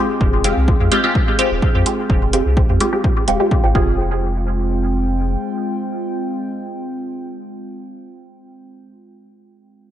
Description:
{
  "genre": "dub techno",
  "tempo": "127 BPM",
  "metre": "4/4",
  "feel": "straight",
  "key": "F minor",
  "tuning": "A4 = 440 Hz",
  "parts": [
    { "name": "warbly tape-like pad", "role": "sustained chords", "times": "0.0-8.5 s", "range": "Ab3 to G5", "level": "-25 LUFS", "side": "equal", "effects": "chorus, built-in reverb, sidechain pumping" },
    { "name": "filtered dub chord stab", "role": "stabs", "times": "0.0-8.5 s", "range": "Ab3 to Ab4", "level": "-19 LUFS", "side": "equal", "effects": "phaser, cassette tape, sidechain pumping, dub echo" },
    { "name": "soft dub sub bass", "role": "bass", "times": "0.2-5.4 s", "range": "Eb1 to F2", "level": "-19 LUFS", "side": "equal", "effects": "sidechain pumping" },
    { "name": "electronic kick drum", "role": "drums", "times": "0.2-3.8 s", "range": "none", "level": "-17 LUFS", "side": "equal", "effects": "none" },
    { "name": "electronic hi-hat", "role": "drums", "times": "0.4-3.4 s", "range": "none", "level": "-23 LUFS", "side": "right 2 dB", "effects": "none" },
    { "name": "wavetable chord stab", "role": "riff", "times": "0.7-8.5 s", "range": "F4 to G5", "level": "-29 LUFS", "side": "left 2 dB", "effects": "vintage 12-bit sampler grit, sidechain pumping, dub echo" }
  ],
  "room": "light reverb, digital ambience",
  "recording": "nothing above 10.9 kHz",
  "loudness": "-15 LUFS",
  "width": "side -11 dB against mid",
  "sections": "0.0-4.0 A section; 4.0-7.8 B section",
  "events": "none",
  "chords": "0.0 Fmadd9",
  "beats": "| 0.21 0.68 1.15 1.62 | 2.10 2.57 3.04 3.51 | 3.99 4.46 4.93 5.40 | 5.88 6.35 6.82 7.29"
}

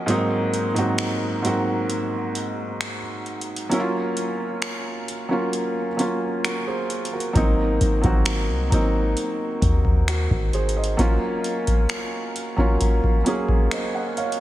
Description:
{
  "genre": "contemporary R&B",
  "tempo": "66 BPM",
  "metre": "4/4",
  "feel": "straight",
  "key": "unclear",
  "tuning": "A4 = 441 Hz",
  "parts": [
    { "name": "felt-muted upright piano", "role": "accompaniment", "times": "0.0-14.4 s", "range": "Ab2 to Gb5", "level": "-23 LUFS", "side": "right 1 dB", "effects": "none" },
    { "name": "booming analog drum machine", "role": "drums", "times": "0.1-14.4 s", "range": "finger snaps, hi-hat, kick drum", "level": "-25 LUFS", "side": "equal", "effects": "vintage 12-bit sampler grit" },
    { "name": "warm 808-style bass", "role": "bass", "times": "7.4-11.0 s", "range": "Ab1 to Eb2", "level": "-21 LUFS", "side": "equal", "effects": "none" }
  ],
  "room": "moderate cathedral reverb, RT60 7.1 s",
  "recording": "dreamy mix soaked in reverb",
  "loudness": "-20 LUFS",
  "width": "side -14 dB against mid",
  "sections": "0.0-14.4 A section",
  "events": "break 0.0-7.4",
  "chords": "0.1 Ab7; 3.7 Gbmaj9#11; 7.4 Ab7; 11.0 Gbmaj13",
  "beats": "| 0.08 0.99 1.90 2.81 | 3.71 4.62 5.53 6.44 | 7.35 8.26 9.17 10.08 | 10.99 11.90 12.81 13.71"
}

